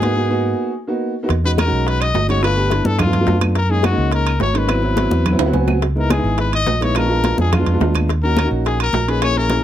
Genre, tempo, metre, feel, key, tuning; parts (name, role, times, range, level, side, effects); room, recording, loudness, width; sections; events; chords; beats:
Afro-Cuban jazz; 212 BPM; 4/4; straight; G# minor; A4 = 440 Hz
clear trumpet; melody; 0.0-9.6 s; E#4 to D#5; -22 LUFS; left 5 dB; plate reverb
warm upright piano; accompaniment; 0.0-9.6 s; F#3 to G#5; -20 LUFS; right 1 dB
fingered electric bass; bass; 0.0-9.6 s; G1 to G#2; -19 LUFS; equal
bongos; percussion; 0.0-9.6 s; -27 LUFS; left 10 dB
congas; percussion; 0.0-9.6 s; -24 LUFS; equal
timbales; percussion; 0.0-9.6 s; -25 LUFS; right 10 dB
claves; percussion; 1.6-9.4 s; -32 LUFS; right 4 dB
light reverb; -15 LUFS; side -11 dB against mid
0.0-1.3 A section; 1.3-9.6 B section
break 0.2-1.3; drum fill 5.3-5.8; upright piano fill 5.3-5.8
0.0 G#m9; 1.3 Emaj13; 2.4 G9; 3.6 F#6; 4.7 G#7alt; 5.8 C#m9; 7.0 A#7b9; 8.1 D#m7
| 0.16 0.45 0.73 1.01 | 1.29 1.58 1.86 2.14 | 2.43 2.71 2.99 3.27 | 3.56 3.84 4.12 4.41 | 4.69 4.97 5.26 5.54 | 5.82 6.10 6.39 6.67 | 6.95 7.24 7.52 7.80 | 8.08 8.37 8.65 8.93 | 9.21 9.50